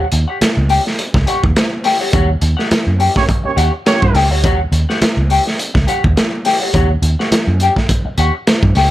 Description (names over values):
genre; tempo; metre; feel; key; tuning
funk; 104 BPM; 4/4; swing 56% on 16ths; Eb mixolydian; A4 = 439 Hz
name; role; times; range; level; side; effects
semi-hollow electric guitar; accompaniment; 0.0-8.9 s; G4 to G5; -17 LUFS; left 3 dB; wah
vintage muted picked electric bass; bass; 0.0-8.9 s; Db2 to G2; -14 LUFS; equal; none
crunchy breakbeat drum kit; drums; 0.1-8.9 s; hi-hat, kick drum, snare drum; -16 LUFS; equal; none
dark horn section; second line; 3.2-4.2 s; Bb3 to Db5; -17 LUFS; right 4 dB; plate reverb
room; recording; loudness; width
light reverb; none; -12 LUFS; side -14 dB against mid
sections
0.0-8.9 A section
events
band accent 2.1-4.4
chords
0.0 Eb7#9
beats
0.41 0.98 1.56 | 2.14 2.71 3.29 3.86 | 4.44 5.01 5.59 6.17 | 6.74 7.32 7.89 8.47